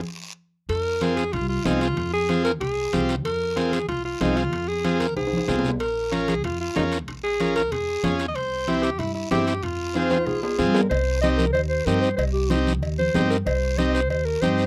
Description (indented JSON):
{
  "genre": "latin, cumbia",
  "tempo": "188 BPM",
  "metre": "4/4",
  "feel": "straight",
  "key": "F minor",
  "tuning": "A4 = 437 Hz",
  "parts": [
    { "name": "edgy alto saxophone", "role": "melody", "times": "0.7-10.6 s", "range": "Eb4 to Eb5", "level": "-28 LUFS", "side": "equal", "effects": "none" },
    { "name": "upright bass", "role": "bass", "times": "0.7-14.7 s", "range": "Bb1 to G2", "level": "-30 LUFS", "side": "equal", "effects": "none" },
    { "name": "guiro", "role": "percussion", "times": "0.7-14.7 s", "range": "none", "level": "-41 LUFS", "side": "equal", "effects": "none" },
    { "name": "timbales and cowbell", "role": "percussion", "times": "0.7-14.3 s", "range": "none", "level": "-34 LUFS", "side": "equal", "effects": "none" },
    { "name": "combo organ", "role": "accompaniment", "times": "1.0-14.6 s", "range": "C4 to Bb4", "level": "-26 LUFS", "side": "equal", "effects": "none" },
    { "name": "congas", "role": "percussion", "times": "1.0-14.6 s", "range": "none", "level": "-32 LUFS", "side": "equal", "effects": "none" },
    { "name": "warm clarinet", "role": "second line", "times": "10.0-14.7 s", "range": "G4 to Eb5", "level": "-27 LUFS", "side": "equal", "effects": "none" }
  ],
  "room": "little or no reverb",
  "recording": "rough home demo mix",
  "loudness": "-23 LUFS",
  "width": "mono",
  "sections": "0.7-10.9 A section; 10.9-14.7 B section",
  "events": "band accent 0.0-0.7; drum fill 5.2-5.8, 10.0-10.9; clarinet solo 10.9-14.7",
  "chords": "0.0 N.C.; 0.7 Fm; 5.8 Bbm; 8.4 C; 9.6 Fm; 10.9 Cm"
}